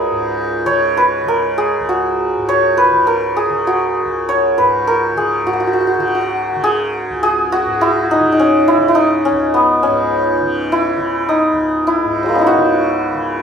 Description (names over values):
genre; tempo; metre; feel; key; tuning
indian classical, Hindustani; 102 BPM; 3/4; straight; C# raga bhimpalasi; A4 = 440 Hz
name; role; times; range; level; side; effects
santur; melody; 0.0-13.4 s; F#3 to G#5; -13 LUFS; equal; none
tanpura; drone; 0.0-13.4 s; C#2 to C#3; -23 LUFS; equal; none
room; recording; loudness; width
wet studio reverb, RT60 0.7 s; band playing live in one room; -13 LUFS; side -7 dB against mid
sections
0.0-5.4 A section; 5.4-13.4 B section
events
speeding up 0.0-13.4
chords
none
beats
| 0.06 0.66 1.26 | 1.86 2.46 3.06 | 3.65 4.25 4.84 | 5.43 6.02 6.61 | 7.20 7.79 8.37 | 8.96 9.54 10.12 | 10.70 11.28 11.86 | 12.43 13.01